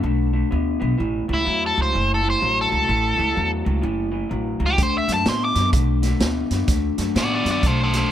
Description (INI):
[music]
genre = electric blues shuffle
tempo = 126 BPM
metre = 4/4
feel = swing 63% on 8ths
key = unclear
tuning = A4 = 441 Hz
[part]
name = electric guitar through a small old amp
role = riff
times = 0.0-8.1 s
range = A2 to B3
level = -24 LUFS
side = left 3 dB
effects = none
[part]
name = upright bass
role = bass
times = 0.0-8.0 s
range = F#1 to A2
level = -23 LUFS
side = right 1 dB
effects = none
[part]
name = biting overdriven guitar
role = melody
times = 1.3-8.1 s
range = E4 to D6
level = -21 LUFS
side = equal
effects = none
[part]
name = vintage drum kit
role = drums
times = 4.8-8.0 s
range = hi-hat, kick drum, snare drum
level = -23 LUFS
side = right 1 dB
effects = none
[sound]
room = light reverb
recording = none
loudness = -18 LUFS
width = side -10 dB against mid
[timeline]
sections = 0.0-8.1 A section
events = none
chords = 0.0 D5; 1.0 A; 4.8 D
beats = 0.03 0.51 | 0.98 1.46 1.93 2.40 | 2.88 3.35 3.83 4.30 | 4.78 5.25 5.73 6.21 | 6.68 7.16 7.64 8.11